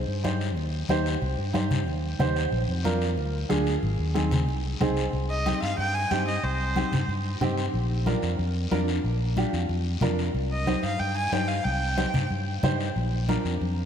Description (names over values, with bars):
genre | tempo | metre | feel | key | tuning
latin, cumbia | 184 BPM | 4/4 | straight | C minor | A4 = 439 Hz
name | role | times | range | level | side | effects
fingered electric bass | bass | 0.0-13.9 s | Ab1 to G2 | -28 LUFS | equal | none
clear upright piano | accompaniment | 0.2-13.5 s | C4 to C5 | -29 LUFS | right 3 dB | wide subtle chorus
congas | percussion | 0.2-13.8 s | none | -31 LUFS | left 3 dB | none
guiro | percussion | 0.2-13.9 s | none | -39 LUFS | left 7 dB | none
clear erhu | melody | 5.3-7.1, 10.5-12.3 s | C5 to Ab5 | -30 LUFS | equal | ping-pong delay
room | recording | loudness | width
moderate lush hall reverb, RT60 3.2 s | dreamy mix soaked in reverb | -24 LUFS | side -8 dB against mid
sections
0.0-5.1 A section; 5.1-13.9 B section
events
none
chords
0.0 Cm; 2.5 Bb; 3.8 Ab; 5.1 Cm; 7.7 Bb; 10.4 Cm; 13.0 Bb